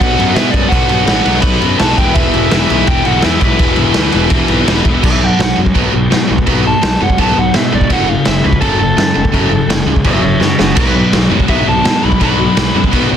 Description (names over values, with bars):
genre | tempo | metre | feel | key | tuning
punk rock | 167 BPM | 4/4 | straight | B minor | A4 = 440 Hz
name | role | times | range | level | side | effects
crunchy overdriven guitar | melody | 0.0-13.2 s | F#4 to B5 | -18 LUFS | equal | none
biting overdriven guitar | riff | 0.0-13.2 s | E2 to B3 | -18 LUFS | left 14 dB | none
high-gain distorted guitar | riff | 0.0-5.0, 10.8-13.2 s | B2 to B4 | -19 LUFS | equal | distortion
tight distorted guitar | riff | 0.0-13.2 s | E2 to B3 | -19 LUFS | right 16 dB | distortion
fuzz picked electric bass | bass | 0.0-13.2 s | E1 to B2 | -17 LUFS | equal | overdrive
raw garage drum kit | drums | 0.0-13.0 s | crash cymbal, kick drum, snare drum | -14 LUFS | equal | none
room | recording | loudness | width
little or no reverb | dense, heavily limited modern master | -9 LUFS | side -9 dB against mid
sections
0.0-5.0 A section; 5.0-13.2 B section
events
overdriven electric guitar solo 5.0-13.2; drum fill 10.4-10.8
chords
0.0 Bm; 2.0 Em; 5.0 B5; 7.9 F#m; 10.8 Bm